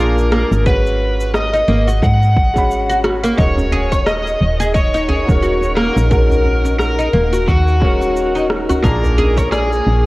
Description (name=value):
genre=organic downtempo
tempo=88 BPM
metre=4/4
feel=swing 57% on 16ths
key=Eb minor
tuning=A4 = 440 Hz
part: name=overdriven slide guitar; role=melody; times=0.0-10.1 s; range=Gb4 to Gb5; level=-20 LUFS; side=left 1 dB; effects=vintage 12-bit sampler grit, tape echo
part: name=felt-muted upright piano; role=accompaniment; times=0.0-10.1 s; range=Ab3 to Cb6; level=-23 LUFS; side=right 1 dB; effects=sidechain pumping, tape echo
part: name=oud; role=arpeggios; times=0.0-9.7 s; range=Bb3 to Eb5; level=-20 LUFS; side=equal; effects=tape echo
part: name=woody FM bass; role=bass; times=0.0-10.1 s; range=Eb1 to Ab2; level=-17 LUFS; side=equal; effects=none
part: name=electronic shaker and rim click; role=drums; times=0.2-9.8 s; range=none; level=-23 LUFS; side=equal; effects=overdrive
part: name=electronic kick drum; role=drums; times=0.7-9.5 s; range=none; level=-17 LUFS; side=equal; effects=overdrive
part: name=ethereal airy pad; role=sustained chords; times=4.3-10.1 s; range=Bb3 to Gb5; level=-26 LUFS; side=equal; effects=ensemble chorus, built-in reverb, sidechain pumping
part: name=djembe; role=percussion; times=3.6-9.5 s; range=none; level=-22 LUFS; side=right 1 dB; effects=none
room=light reverb, digital ambience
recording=worn, warbling old tape, cassette tape, warbly pitch drift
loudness=-12 LUFS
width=side -20 dB against mid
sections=0.0-10.1 A section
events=none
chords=0.0 Bb7; 0.7 Abm7; 3.4 Ebm7; 8.8 Bb7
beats=| 0.66 1.34 2.02 2.71 | 3.39 4.07 4.75 5.43 | 6.12 6.80 7.48 8.16 | 8.84 9.52